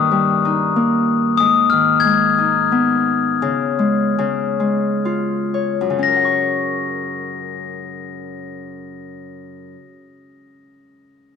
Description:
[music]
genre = children's music, lullaby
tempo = 58-94 BPM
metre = 3/4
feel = rubato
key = F# major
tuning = A4 = 441 Hz
[part]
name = glockenspiel with soft plastic mallets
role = melody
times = 0.0-10.0 s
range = D#6 to A#6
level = -18 LUFS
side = left 9 dB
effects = slapback echo
[part]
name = Celtic harp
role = accompaniment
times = 0.0-10.2 s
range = F#2 to C#6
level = -19 LUFS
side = left 1 dB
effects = none
[sound]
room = moderate echo chamber reverb, RT60 1.4 s, studio reverb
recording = none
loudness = -15 LUFS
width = side -6 dB against mid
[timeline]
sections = 0.0-6.0 A section; 6.0-11.4 B section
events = slowing down 1.4-6.0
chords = 0.0 D#/G; 1.4 G#m; 3.4 C#5; 4.2 C#; 6.0 F#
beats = 0.11 0.76 | 1.40 2.04 2.71 | 3.41 4.18 5.05 | 6.03 7.06 8.08 | 9.08 10.08

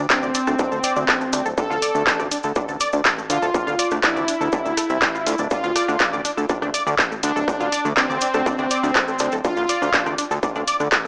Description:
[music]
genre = melodic techno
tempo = 122 BPM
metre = 4/4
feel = straight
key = D minor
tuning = A4 = 440 Hz
[part]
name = fat analog bass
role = bass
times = 0.0-10.9 s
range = D1 to D2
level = -27 LUFS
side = equal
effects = sidechain pumping
[part]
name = analog synth brass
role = melody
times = 0.1-10.1 s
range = C4 to A4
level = -27 LUFS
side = equal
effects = chorus, sidechain pumping, tape echo
[part]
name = tight sequenced synth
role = arpeggios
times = 0.1-11.1 s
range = A3 to D5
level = -28 LUFS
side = equal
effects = chorus, sidechain pumping, tape echo
[part]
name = electronic kick drum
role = drums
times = 0.1-11.0 s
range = none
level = -28 LUFS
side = equal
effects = distortion
[part]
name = techno drum kit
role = drums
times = 0.1-11.0 s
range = handclaps, hi-hat, rim click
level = -23 LUFS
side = equal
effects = sidechain pumping on hats
[part]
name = cabasa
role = percussion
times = 0.1-11.1 s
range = none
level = -37 LUFS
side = equal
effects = none
[sound]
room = light reverb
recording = dry, gritty hardware recording, small speaker sound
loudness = -21 LUFS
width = mono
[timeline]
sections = 0.0-11.1 A section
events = none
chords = 0.0 D5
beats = 0.10 0.59 1.08 | 1.58 2.07 2.56 3.05 | 3.54 4.04 4.53 5.02 | 5.51 6.00 6.50 6.99 | 7.48 7.97 8.46 8.95 | 9.45 9.94 10.43 10.92

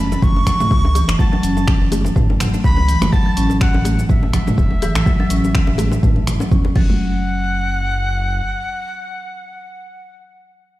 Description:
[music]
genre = afro house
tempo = 124 BPM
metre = 4/4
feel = swing 55% on 16ths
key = unclear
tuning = A4 = 440 Hz
[part]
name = breathy bright jazz flute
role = melody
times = 0.0-10.2 s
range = E5 to C#6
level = -24 LUFS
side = equal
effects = digital delay
[part]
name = round analog bass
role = bass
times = 0.0-8.4 s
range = E1 to E2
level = -20 LUFS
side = equal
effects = sidechain pumping
[part]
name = deep house drum kit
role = drums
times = 0.1-6.9 s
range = crash cymbal, finger snaps, hi-hat, shaker, toms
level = -25 LUFS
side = equal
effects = overdrive
[part]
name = bongos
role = percussion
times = 0.1-7.0 s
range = none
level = -28 LUFS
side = left 4 dB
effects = none
[part]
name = marimba with medium hard mallets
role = arpeggios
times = 0.2-7.2 s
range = E3 to C#4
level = -22 LUFS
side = equal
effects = sidechain pumping, digital delay
[part]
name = electronic kick drum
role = drums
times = 0.2-6.9 s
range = none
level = -16 LUFS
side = equal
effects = overdrive
[part]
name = congas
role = percussion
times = 0.2-7.0 s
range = none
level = -26 LUFS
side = right 3 dB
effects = none
[sound]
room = studio reverb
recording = played on a big sound system in a bare room, large studio reverb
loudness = -14 LUFS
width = side -16 dB against mid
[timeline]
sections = 0.0-7.0 A section; 7.0-10.8 B section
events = drop 0.0-7.0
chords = 0.0 F#m; 3.1 A5; 6.8 N.C.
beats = 0.23 0.71 | 1.19 1.68 2.16 2.65 | 3.13 3.61 4.10 4.58 | 5.07 5.55 6.03 6.52 | 7.00 7.48 7.97 8.45 | 8.94 9.42 9.90

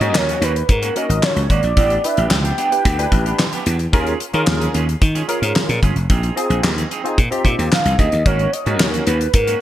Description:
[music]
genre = early-eighties boogie funk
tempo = 111 BPM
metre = 4/4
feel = straight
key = G# dorian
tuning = A4 = 443 Hz
[part]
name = warm velvety synth lead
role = melody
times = 0.0-3.6, 7.7-9.6 s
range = A#4 to G5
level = -20 LUFS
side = right 1 dB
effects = chorus
[part]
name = barky tine electric piano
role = accompaniment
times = 0.0-9.1 s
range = B#3 to B4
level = -24 LUFS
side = left 1 dB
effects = ensemble chorus
[part]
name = electric guitar at the edge of break-up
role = riff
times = 0.0-9.6 s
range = A#3 to G#4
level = -27 LUFS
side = right 6 dB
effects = analog chorus
[part]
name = slap bass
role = bass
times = 0.0-9.5 s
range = E#1 to D#3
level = -19 LUFS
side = equal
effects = none
[part]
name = damped 70s drum kit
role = drums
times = 0.0-9.6 s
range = handclaps, hi-hat, kick drum, snare drum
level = -18 LUFS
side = equal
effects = gated reverb
[sound]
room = light reverb, studio reverb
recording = bright 1980s-style digital production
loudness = -15 LUFS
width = side -12 dB against mid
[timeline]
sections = 0.0-9.6 A section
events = none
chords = 0.0 G#9sus4; 1.8 A9sus4; 3.9 D#9sus4; 6.1 A#9sus4; 8.3 G#9sus4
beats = 0.15 0.69 1.23 | 1.77 2.31 2.85 3.39 | 3.93 4.47 5.01 5.55 | 6.09 6.63 7.17 7.72 | 8.26 8.80 9.34

